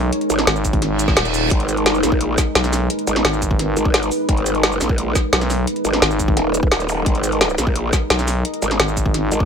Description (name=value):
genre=dark technical drum and bass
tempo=173 BPM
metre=4/4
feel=straight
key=G# minor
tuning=A4 = 439 Hz
part: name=deep dark ambient pad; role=sustained chords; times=0.0-9.5 s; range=G#3 to D#5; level=-22 LUFS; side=equal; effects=chorus, built-in reverb, sidechain pumping
part: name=growling FM bass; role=bass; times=0.0-9.3 s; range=D#1 to B1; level=-20 LUFS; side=equal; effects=tube saturation
part: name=drum and bass drum kit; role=drums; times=0.1-9.4 s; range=hi-hat, shaker, snare drum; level=-19 LUFS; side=equal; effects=none
part: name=growl bass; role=bass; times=0.3-9.5 s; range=D#1 to A#1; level=-20 LUFS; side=equal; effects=chorus, overdrive, sidechain pumping
part: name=electronic kick drum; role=drums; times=0.6-9.5 s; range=none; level=-19 LUFS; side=equal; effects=none
part: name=reverse cymbal and zap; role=sound effects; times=0.9-1.5, 6.9-7.0 s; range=none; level=-25 LUFS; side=right 4 dB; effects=none
room=light reverb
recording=none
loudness=-15 LUFS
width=side -7 dB against mid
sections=0.0-9.5 A section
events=reverse cymbal 0.9-1.5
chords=0.0 G#m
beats=| 0.12 0.47 0.82 1.17 | 1.51 1.86 2.21 2.55 | 2.90 3.25 3.59 3.94 | 4.29 4.63 4.98 5.33 | 5.67 6.02 6.37 6.71 | 7.06 7.41 7.75 8.10 | 8.45 8.80 9.14